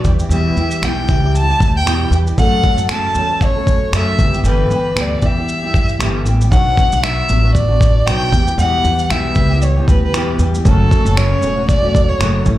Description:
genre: acoustic pop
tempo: 116 BPM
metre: 4/4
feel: swing 55% on 16ths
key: unclear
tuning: A4 = 440 Hz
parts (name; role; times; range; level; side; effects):
- dark violin; melody; 0.0-12.5 s; A4 to A5; -19 LUFS; left 1 dB; slapback echo
- flamenco guitar; accompaniment; 0.0-12.6 s; E2 to A4; -20 LUFS; equal; double-tracked left and right, slapback echo
- upright bass; bass; 0.0-12.6 s; E1 to G2; -16 LUFS; equal; none
- dusty soul sampler-style drum kit; drums; 0.0-12.6 s; finger snaps, kick drum, shaker; -17 LUFS; equal; none
room: little or no reverb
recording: live gig heard through the venue's PA, club reverb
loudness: -12 LUFS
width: side -14 dB against mid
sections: 0.0-12.6 A section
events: none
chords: 0.1 Em; 2.4 F#m; 4.2 G6; 6.5 Bm; 8.3 Em; 10.7 F#m

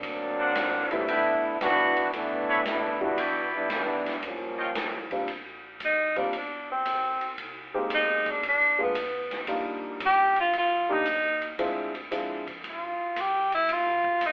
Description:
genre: jazz, big band swing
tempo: 114 BPM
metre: 4/4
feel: swing 68% on 8ths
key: Bb major from 5.3 s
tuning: A4 = 440 Hz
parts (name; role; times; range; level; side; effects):
- bright trombone section; second line; 0.0-5.1 s; E3 to F#4; -26 LUFS; equal; none
- upright bass; bass; 0.0-14.3 s; F1 to G2; -52 LUFS; equal; none
- swinging big-band drum kit; drums; 0.0-14.3 s; hi-hat, kick drum, ride cymbal, snare drum; -34 LUFS; equal; none
- clear trumpet section; stabs; 0.4-4.7 s; D4 to G5; -28 LUFS; equal; none
- warm grand piano; accompaniment; 0.9-12.4 s; G3 to G4; -30 LUFS; equal; none
- warm tenor saxophone; melody; 5.8-14.3 s; Cb4 to G4; -24 LUFS; equal; none
room: wet studio reverb, RT60 0.7 s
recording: band playing live in one room, telephone sound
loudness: -24 LUFS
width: side -29 dB against mid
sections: 0.0-5.3 A section; 5.3-14.3 B section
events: trombone section solo 0.0-5.3; tenor saxophone solo 5.3-14.3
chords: 0.0 D7b13; 1.1 G69; 3.2 Em7; 4.2 Eb9; 5.3 Bb69; 7.4 Fm11; 8.4 Bb7b9; 9.5 Ebmaj9; 11.6 Dm7b5; 12.6 Fsus2; 13.7 Cm11

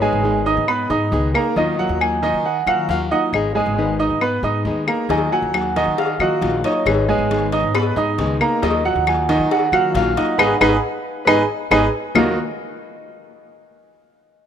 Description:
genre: latin, Cuban son and guajira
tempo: 136 BPM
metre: 4/4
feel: straight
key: Eb minor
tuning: A4 = 440 Hz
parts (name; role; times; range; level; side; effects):
- Celtic harp; melody; 0.0-12.4 s; Cb5 to Ab5; -22 LUFS; right 1 dB; none
- nylon-string guitar; accompaniment; 0.0-12.3 s; Eb3 to Ab4; -25 LUFS; left 3 dB; none
- bright grand piano; arpeggios; 0.0-12.4 s; Eb3 to Eb6; -20 LUFS; right 3 dB; none
- upright bass; bass; 0.0-12.4 s; Ab1 to Eb3; -25 LUFS; equal; none
- claves; percussion; 0.7-12.3 s; none; -20 LUFS; left 6 dB; none
- cowbell and bongos; percussion; 5.1-12.3 s; none; -26 LUFS; left 8 dB; none
room: light reverb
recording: rough home demo mix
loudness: -16 LUFS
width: side -8 dB against mid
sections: 0.0-12.2 A section; 12.2-13.9 B section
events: band accent 10.4-12.2; drum fill 11.5-12.2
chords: 0.0 Abm; 1.6 Ebmadd9; 3.3 Abm; 5.1 Ebmadd9; 6.9 Abm; 8.6 Ebmadd9; 10.4 Abm; 12.2 Ebmadd9

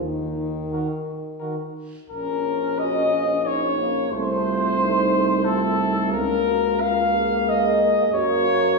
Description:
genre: classical, brass quintet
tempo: 89 BPM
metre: 3/4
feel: uneven beats, rubato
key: Bb minor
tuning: A4 = 439 Hz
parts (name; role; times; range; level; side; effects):
- mellow French horn; accompaniment; 0.0-8.8 s; Eb3 to A4; -29 LUFS; left 4 dB; none
- clear bass trombone; bass; 0.0-8.8 s; Bb1 to Gb2; -27 LUFS; right 2 dB; none
- warm cornet; melody; 0.7-8.8 s; A4 to F5; -24 LUFS; left 6 dB; none
- mellow flugelhorn; second line; 0.7-8.8 s; Gb4 to F5; -24 LUFS; right 4 dB; none
- warm trombone; accompaniment; 0.7-8.8 s; Eb3 to Db4; -28 LUFS; right 2 dB; none
room: wet recital hall reverb, RT60 1.3 s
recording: recorded in a church or concert hall, studio reverb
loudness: -19 LUFS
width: side -2 dB against mid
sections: 0.0-2.1 A section; 2.1-8.8 B section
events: none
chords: 0.0 N.C.; 2.1 Bbm; 4.1 Cm6; 6.1 Bbm/Db; 8.1 Gb

